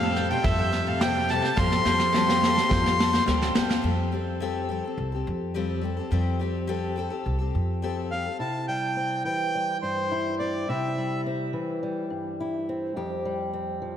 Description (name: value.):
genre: indie folk with a building arrangement.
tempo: 105 BPM.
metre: 4/4.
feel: straight.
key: unclear.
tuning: A4 = 440 Hz.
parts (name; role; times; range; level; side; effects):
accordion; melody; 0.0-3.2, 8.1-11.2 s; C5 to C6; -26 LUFS; left 1 dB; slapback echo, tape echo.
warm cello; second line; 0.0-3.2 s; G2 to F3; -32 LUFS; right 4 dB; tape echo.
bright upright piano; accompaniment; 0.0-3.9 s; F1 to A4; -35 LUFS; left 4 dB; none.
picked steel-string acoustic guitar; accompaniment; 0.0-8.4 s; F3 to A4; -31 LUFS; left 5 dB; slapback echo.
bowl-back mandolin; arpeggios; 0.0-3.8 s; F4 to G5; -33 LUFS; right 5 dB; slapback echo, tape echo.
upright bass; bass; 0.0-8.3 s; C2 to F2; -28 LUFS; equal; none.
vintage brush drum kit; drums; 0.2-3.8 s; kick drum, snare drum; -26 LUFS; equal; none.
fingerpicked old ladder-braced acoustic guitar; accompaniment; 8.4-14.0 s; F2 to G4; -29 LUFS; left 1 dB; slapback echo.
room: wet concert hall reverb, RT60 2.3 s.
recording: big arena sound.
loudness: -24 LUFS.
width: side -9 dB against mid.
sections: 0.0-3.8 A section; 3.8-8.4 B section; 8.4-14.0 C section.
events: drum fill 1.6-3.8.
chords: 0.0 Fadd9; 8.4 C; 13.0 Fsus2.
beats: 0.45 1.01 | 1.58 2.14 2.71 3.28 | 3.84 4.41 4.98 5.54 | 6.11 6.68 7.25 7.82 | 8.39 8.96 9.53 10.10 | 10.68 11.25 11.82 12.39 | 12.96 13.53.